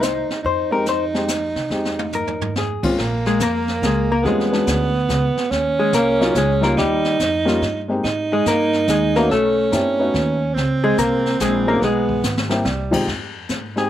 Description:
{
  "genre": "jazz, small-group swing and bop",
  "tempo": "142 BPM",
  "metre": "3/4",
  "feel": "swing 65% on 8ths",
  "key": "Bb minor",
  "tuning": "A4 = 440 Hz",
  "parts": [
    { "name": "vintage hollow-body jazz guitar", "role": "melody", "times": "0.0-13.9 s", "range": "G3 to C5", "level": "-19 LUFS", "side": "left 3 dB", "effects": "none" },
    { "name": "clear alto saxophone", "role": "second line", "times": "0.0-13.0 s", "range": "G3 to D#4", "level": "-21 LUFS", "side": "right 4 dB", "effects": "none" },
    { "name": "upright bass", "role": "bass", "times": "0.0-13.9 s", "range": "Ab1 to C3", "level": "-25 LUFS", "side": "equal", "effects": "none" },
    { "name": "jazz brush drum kit", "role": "drums", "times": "0.0-13.9 s", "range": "brushed snare drum, crash cymbal, hi-hat, kick drum, snare drum, toms", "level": "-26 LUFS", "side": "left 1 dB", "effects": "none" },
    { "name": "warm upright piano", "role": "accompaniment", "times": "0.7-13.9 s", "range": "Bb2 to Ab4", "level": "-22 LUFS", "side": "left 2 dB", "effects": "none" }
  ],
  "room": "little or no reverb",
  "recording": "none",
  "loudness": "-17 LUFS",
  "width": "side -12 dB against mid",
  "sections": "0.0-3.0 A section; 3.0-13.1 B section",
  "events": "drum fill 1.7-2.6, 12.2-12.7",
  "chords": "0.4 Fm7; 3.0 Bbm7; 4.2 E13; 5.5 Eb7(no3); 6.8 Eb; 8.0 Ab5; 9.3 B9; 10.6 Db5; 11.8 Abmmaj7; 12.7 C5; 13.1 Fm7"
}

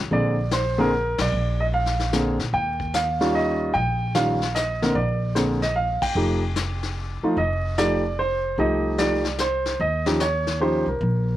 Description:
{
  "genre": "jazz piano trio",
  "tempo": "149 BPM",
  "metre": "3/4",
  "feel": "swing 66% on 8ths",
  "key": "Bb major",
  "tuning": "A4 = 445 Hz",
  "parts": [
    { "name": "upright bass", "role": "bass", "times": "0.0-11.4 s", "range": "F1 to Bb2", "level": "-26 LUFS", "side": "equal", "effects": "none" },
    { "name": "warm grand piano", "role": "melody", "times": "0.1-11.4 s", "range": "D3 to G5", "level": "-22 LUFS", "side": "right 1 dB", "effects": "none" },
    { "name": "vintage brush drum kit", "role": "drums", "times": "0.1-11.4 s", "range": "brushed snare drum, hi-hat, kick drum, ride cymbal, snare drum", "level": "-30 LUFS", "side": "left 6 dB", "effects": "none" }
  ],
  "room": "light reverb",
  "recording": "1960s-style stereo, vinyl crackle",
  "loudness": "-20 LUFS",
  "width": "side -13 dB against mid",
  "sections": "0.0-11.4 A section",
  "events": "band accent 1.1, 6.0",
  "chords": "0.1 Bb9; 2.5 Eb9; 5.0 Bbadd9; 6.2 F9; 9.8 Eb9"
}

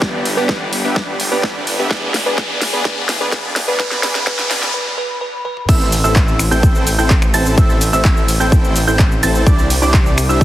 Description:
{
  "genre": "EDM, festival progressive house",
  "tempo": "127 BPM",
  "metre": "4/4",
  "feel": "straight",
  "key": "A minor",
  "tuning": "A4 = 438 Hz",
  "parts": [
    { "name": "dark studio string section", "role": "sustained chords", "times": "0.0-4.7 s", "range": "D3 to G#4", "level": "-29 LUFS", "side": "left 2 dB", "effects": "sidechain pumping" },
    { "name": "supersaw chords", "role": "riff", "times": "0.0-10.4 s", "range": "B3 to A5", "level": "-20 LUFS", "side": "equal", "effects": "sidechain pumping, tape echo" },
    { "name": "detuned saw bass", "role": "bass", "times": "0.0-10.4 s", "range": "E1 to C2", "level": "-20 LUFS", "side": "equal", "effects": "sidechain pumping, high-pass filter" },
    { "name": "big-room dance drum kit", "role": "drums", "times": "0.0-10.4 s", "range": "crash cymbal, finger snaps, handclaps, hi-hat, shaker, snare drum, toms", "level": "-20 LUFS", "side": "equal", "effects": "overdrive" },
    { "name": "electronic kick drum", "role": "drums", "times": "0.0-10.4 s", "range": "none", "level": "-13 LUFS", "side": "equal", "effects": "overdrive" },
    { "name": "riser", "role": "sound effects", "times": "0.0-4.7 s", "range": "none", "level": "-23 LUFS", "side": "equal", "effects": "none" },
    { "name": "bell-like FM electric piano", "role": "melody", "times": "0.4-5.7 s", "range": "B4", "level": "-25 LUFS", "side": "equal", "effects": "chorus, phaser, tape echo" },
    { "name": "warm baby grand piano", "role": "arpeggios", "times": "5.7-10.4 s", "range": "D6 to A6", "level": "-21 LUFS", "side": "right 3 dB", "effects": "sidechain pumping, tape echo" }
  ],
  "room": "light reverb, digital ambience",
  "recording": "heavily compressed radio sound, multiband compression, high-pass filter",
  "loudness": "-13 LUFS",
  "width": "side -14 dB against mid",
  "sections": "0.0-5.7 A section; 5.7-10.4 B section",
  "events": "build-up 0.0-5.7; drum fill 0.0-4.7, 5.5; riser 0.0-4.7; filter sweep on supersaw synth 0.0-5.7; break 4.7-5.7; drop 5.7-10.4",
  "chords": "0.0 G; 1.9 E; 5.7 Am; 9.5 Cadd9"
}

